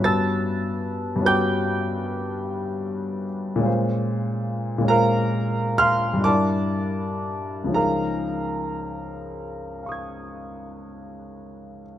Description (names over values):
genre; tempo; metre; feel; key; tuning
classical, impressionist solo piano; 37-51 BPM (dotted quarters); 9/8; rubato; unclear; A4 = 436 Hz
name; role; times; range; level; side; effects
warm grand piano; solo; 0.0-12.0 s; Db2 to A6; -22 LUFS; equal; none
room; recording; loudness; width
moderate concert hall reverb, RT60 2.0 s; close, detailed microphones; -21 LUFS; side -11 dB against mid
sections
0.0-12.0 A section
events
none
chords
0.1 Gmaj7#11; 3.7 Bbm9; 6.3 Gm6; 7.8 Db69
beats
| 0.06 1.27 2.46 | 3.67 4.91 6.25 | 7.76 9.33 10.84